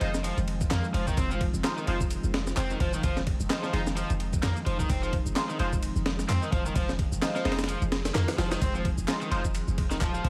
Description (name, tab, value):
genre	breakbeat, breaks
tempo	129 BPM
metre	4/4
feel	swing 57% on 16ths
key	F minor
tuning	A4 = 440 Hz
part	phased analog pad	sustained chords	0.0-10.3 s	Eb3 to Ab4	-39 LUFS	equal	phaser, chorus, sidechain pumping
part	raw garage guitar	riff	0.0-10.3 s	Eb3 to Eb4	-36 LUFS	equal	overdrive, delay
part	band-passed chord stab	stabs	0.0-9.4 s	Ab3 to C5	-38 LUFS	equal	phaser, delay
part	warm 808-style bass	bass	0.0-10.3 s	Eb1 to F2	-33 LUFS	equal	none
part	breakbeat sampler-style drum kit	drums	0.0-10.3 s	kick drum, ride cymbal, snare drum	-32 LUFS	equal	none
part	electronic shaker and handclaps	drums	0.1-10.2 s	none	-42 LUFS	equal	none
room	little or no reverb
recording	vinyl crackle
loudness	-28 LUFS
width	mono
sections	0.0-10.3 A section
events	none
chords	0.0 Fm7